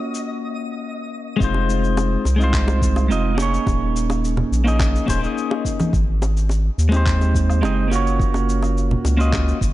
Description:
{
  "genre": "sunset chillout",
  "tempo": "106 BPM",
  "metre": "4/4",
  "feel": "straight",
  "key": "F minor",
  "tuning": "A4 = 444 Hz",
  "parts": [
    { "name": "clean electric guitar", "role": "accompaniment", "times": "0.0-9.6 s", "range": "Ab3 to Eb5", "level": "-22 LUFS", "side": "moving between left 7 dB and right 6 dB", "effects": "auto-pan, tape echo" },
    { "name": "electronic cabasa, handclaps and woodblock", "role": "drums", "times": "0.1-9.7 s", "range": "none", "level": "-32 LUFS", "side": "left 2 dB", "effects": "overdrive, studio reverb" },
    { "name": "round analog bass", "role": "bass", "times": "1.4-9.7 s", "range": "Eb1 to Eb2", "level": "-19 LUFS", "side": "equal", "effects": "none" },
    { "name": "electronic kick drum", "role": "drums", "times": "1.4-9.7 s", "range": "none", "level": "-23 LUFS", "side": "equal", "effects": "overdrive, studio reverb" },
    { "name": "bongos and congas", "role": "percussion", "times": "1.5-9.4 s", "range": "none", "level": "-27 LUFS", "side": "equal", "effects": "none" }
  ],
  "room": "light reverb, digital ambience",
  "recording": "dark, warm production, nothing above 11.0 kHz",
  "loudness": "-17 LUFS",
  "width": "side -15 dB against mid",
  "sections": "0.0-1.4 A section; 1.4-9.7 B section",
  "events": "none",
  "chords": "0.0 Gbmaj7; 1.4 Fm7; 3.7 Eb7sus4; 5.9 Abmaj7; 7.9 Gbmaj7"
}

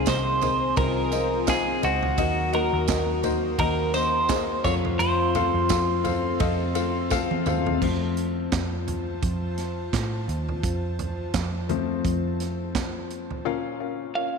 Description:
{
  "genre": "piano-driven pop",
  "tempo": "85 BPM",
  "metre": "4/4",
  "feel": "swing 56% on 16ths",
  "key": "unclear",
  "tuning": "A4 = 440 Hz",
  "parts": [
    { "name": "twelve-string electric guitar", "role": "melody", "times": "0.0-7.1, 14.2-14.4 s", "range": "Gb4 to F5", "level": "-26 LUFS", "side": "right 2 dB", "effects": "spring reverb" },
    { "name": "mellow French horn section", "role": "second line", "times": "0.0-7.5 s", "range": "Eb3 to A4", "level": "-31 LUFS", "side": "left 9 dB", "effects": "none" },
    { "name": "clear upright piano", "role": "accompaniment", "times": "0.0-14.4 s", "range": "Bb2 to Gb5", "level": "-28 LUFS", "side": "left 10 dB", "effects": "none" },
    { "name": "airy breathy pad", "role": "sustained chords", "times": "0.0-13.4 s", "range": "F4 to Eb6", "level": "-37 LUFS", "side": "equal", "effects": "chorus, tremolo" },
    { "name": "picked steel-string acoustic guitar", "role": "riff", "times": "0.0-7.8 s", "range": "F2 to Ab4", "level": "-34 LUFS", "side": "right 13 dB", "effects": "none" },
    { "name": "vintage muted picked electric bass", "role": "bass", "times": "0.0-13.4 s", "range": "C2 to A2", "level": "-29 LUFS", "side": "right 1 dB", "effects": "none" },
    { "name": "natural country drum kit", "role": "drums", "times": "0.1-13.4 s", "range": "crash cymbal, handclaps, hi-hat, kick drum, ride cymbal, snare drum, toms", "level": "-30 LUFS", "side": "right 5 dB", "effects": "none" },
    { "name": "tambourine", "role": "percussion", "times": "0.1-7.6 s", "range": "none", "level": "-39 LUFS", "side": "right 16 dB", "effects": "none" }
  ],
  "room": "moderate echo chamber reverb, RT60 2.3 s",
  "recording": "1960s-style stereo with parts hard left and right",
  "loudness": "-22 LUFS",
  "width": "side -5 dB against mid",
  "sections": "0.0-7.8 A section; 7.8-13.5 B section",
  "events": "drum fill 7.1-7.8; upright piano solo 7.8-13.5",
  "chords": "0.0 Ab/C; 2.2 Ebm; 4.6 F; 13.5 Bbm"
}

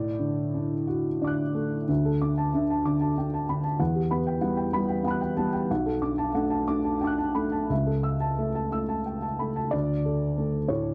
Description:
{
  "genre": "neoclassical minimalist piano",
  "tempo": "58-64 BPM (dotted quarters)",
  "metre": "6/8",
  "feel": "rubato",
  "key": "D major",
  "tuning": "A4 = 439 Hz",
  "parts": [
    { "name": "felt-muted upright piano", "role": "solo", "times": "0.0-10.9 s", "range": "B1 to F#6", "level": "-27 LUFS", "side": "equal", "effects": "none" }
  ],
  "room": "moderate studio reverb, RT60 0.8 s",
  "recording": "dark, warm production",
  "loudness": "-27 LUFS",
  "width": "mono",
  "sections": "0.0-1.9 A section; 1.9-9.7 B section; 9.7-10.9 C section",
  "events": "none",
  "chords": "0.0 D/A; 1.9 Dsus2; 3.8 Emadd9; 5.7 Bm7; 7.7 A/C#; 9.7 D5"
}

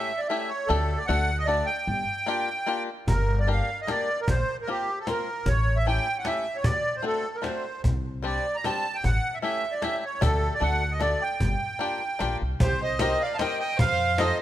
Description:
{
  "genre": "musette waltz",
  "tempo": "152 BPM",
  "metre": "3/4",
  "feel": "straight",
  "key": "G minor",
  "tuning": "A4 = 441 Hz",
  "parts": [
    { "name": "accordion", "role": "melody", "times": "0.0-14.4 s", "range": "G4 to Bb5", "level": "-27 LUFS", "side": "right 2 dB", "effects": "light tremolo tuning" },
    { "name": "bluegrass banjo", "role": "accompaniment", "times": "0.0-14.4 s", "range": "G3 to Bb4", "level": "-30 LUFS", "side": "left 5 dB", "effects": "none" },
    { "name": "upright bass", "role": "bass", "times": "0.7-14.3 s", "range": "G1 to F2", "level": "-27 LUFS", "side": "equal", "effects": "none" },
    { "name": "cajon", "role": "drums", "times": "3.1-14.3 s", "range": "none", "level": "-28 LUFS", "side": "equal", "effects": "none" },
    { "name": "rich violin", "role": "second line", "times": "12.6-14.4 s", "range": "G4 to F5", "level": "-31 LUFS", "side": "right 3 dB", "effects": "none" }
  ],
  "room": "light reverb",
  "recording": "close, detailed microphones",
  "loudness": "-24 LUFS",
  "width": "side -13 dB against mid",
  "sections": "0.0-3.1 A section; 3.1-12.6 A section; 12.6-14.4 B section",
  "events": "none",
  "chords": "0.0 A7; 0.7 Dsus4; 1.1 D; 1.9 Gm7; 3.1 Gm; 4.3 Bbsus2; 5.5 A7; 6.6 D7; 7.8 Csus2; 9.0 A7; 10.2 Dsus4; 10.6 D; 11.4 Gm7; 12.6 Cm7; 13.8 F7"
}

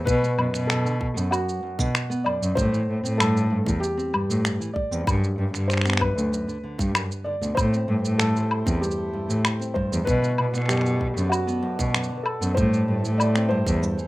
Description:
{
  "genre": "folktronica",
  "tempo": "96 BPM",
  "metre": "4/4",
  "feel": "straight",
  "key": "A dorian",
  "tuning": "A4 = 440 Hz",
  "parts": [
    { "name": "felt-muted upright piano", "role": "melody", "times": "0.0-14.1 s", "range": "F#4 to D5", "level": "-28 LUFS", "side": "equal", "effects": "tape echo" },
    { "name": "clear cello", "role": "bass", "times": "0.1-13.8 s", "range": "D2 to B2", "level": "-24 LUFS", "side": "equal", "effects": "tube saturation" },
    { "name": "electronic kick drum", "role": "drums", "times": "0.1-13.8 s", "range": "none", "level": "-27 LUFS", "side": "equal", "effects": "none" },
    { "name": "electronic shaker, woodblock and finger snaps", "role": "drums", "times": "0.1-14.1 s", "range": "none", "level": "-27 LUFS", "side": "left 1 dB", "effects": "none" },
    { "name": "nylon-string guitar", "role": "arpeggios", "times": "0.2-14.1 s", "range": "F#2 to C4", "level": "-31 LUFS", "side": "equal", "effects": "low-pass filter" },
    { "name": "pedal harmonium", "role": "sustained chords", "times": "7.6-14.1 s", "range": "B2 to D5", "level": "-36 LUFS", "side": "equal", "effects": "none" }
  ],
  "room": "light reverb",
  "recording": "rough home demo mix",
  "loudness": "-21 LUFS",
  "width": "side -18 dB against mid",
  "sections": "0.0-14.1 A section",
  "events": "none",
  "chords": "0.1 B7(no3); 2.6 Am7; 5.1 Gmaj7; 7.6 Am7; 10.1 Bm7; 12.6 Am7"
}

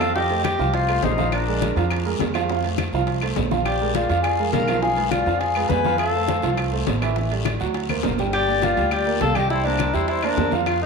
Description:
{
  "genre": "Afro-Cuban jazz",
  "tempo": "205 BPM",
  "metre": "4/4",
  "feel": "straight",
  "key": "unclear",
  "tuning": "A4 = 440 Hz",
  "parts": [
    { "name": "breathy alto saxophone", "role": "melody", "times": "0.0-10.9 s", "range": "D4 to B4", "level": "-23 LUFS", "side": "left 2 dB", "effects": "tape echo" },
    { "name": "silver concert flute", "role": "second line", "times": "0.0-10.9 s", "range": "Bb4 to G#5", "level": "-28 LUFS", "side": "left 8 dB", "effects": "none" },
    { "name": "dark baby grand piano", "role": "accompaniment", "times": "0.0-10.9 s", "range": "E3 to G5", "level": "-25 LUFS", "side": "right 8 dB", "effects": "none" },
    { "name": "upright bass", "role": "bass", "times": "0.0-10.9 s", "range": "G1 to F2", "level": "-26 LUFS", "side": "equal", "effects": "none" },
    { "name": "claves", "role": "percussion", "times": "0.0-10.8 s", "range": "none", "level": "-36 LUFS", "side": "left 9 dB", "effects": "none" },
    { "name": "guiro", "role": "percussion", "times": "0.0-10.9 s", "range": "none", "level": "-37 LUFS", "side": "left 12 dB", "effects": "none" },
    { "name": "timbales", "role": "percussion", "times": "0.0-10.8 s", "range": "none", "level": "-32 LUFS", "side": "right 10 dB", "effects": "none" },
    { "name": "bongos", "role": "percussion", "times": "0.2-10.8 s", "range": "none", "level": "-33 LUFS", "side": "left 10 dB", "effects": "none" },
    { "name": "congas", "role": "percussion", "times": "0.2-10.9 s", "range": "none", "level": "-32 LUFS", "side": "left 10 dB", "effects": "none" }
  ],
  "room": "wet echo chamber reverb, RT60 2.0 s",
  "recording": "1960s-style stereo with parts hard left and right",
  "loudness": "-19 LUFS",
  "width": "side -4 dB against mid",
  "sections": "0.0-10.9 A section",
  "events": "drum fill 7.9-8.3",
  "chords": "0.0 F9; 1.3 Bb7; 2.5 F; 3.7 Bb7; 4.8 Bdim7; 6.0 F; 7.2 A5; 7.7 Daug7; 8.3 Gm7; 9.5 C9"
}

